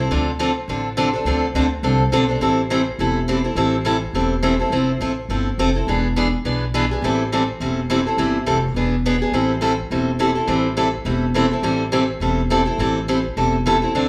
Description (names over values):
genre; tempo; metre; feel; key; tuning
acoustic string swing (jazz manouche); 208 BPM; 4/4; swing 57% on 8ths; A minor; A4 = 440 Hz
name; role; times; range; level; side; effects
picked steel-string acoustic guitar; accompaniment; 0.0-14.1 s; D3 to A4; -21 LUFS; equal; none
upright bass; bass; 0.0-14.1 s; E1 to D2; -26 LUFS; equal; none
room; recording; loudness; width
moderate large studio reverb, RT60 0.8 s; band playing live in one room; -20 LUFS; mono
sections
0.0-9.3 A section; 9.3-14.1 A section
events
none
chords
0.1 Dm7; 2.4 Am7; 4.7 Fmaj7; 5.9 E7; 7.0 Am7; 8.8 E7; 9.3 Am7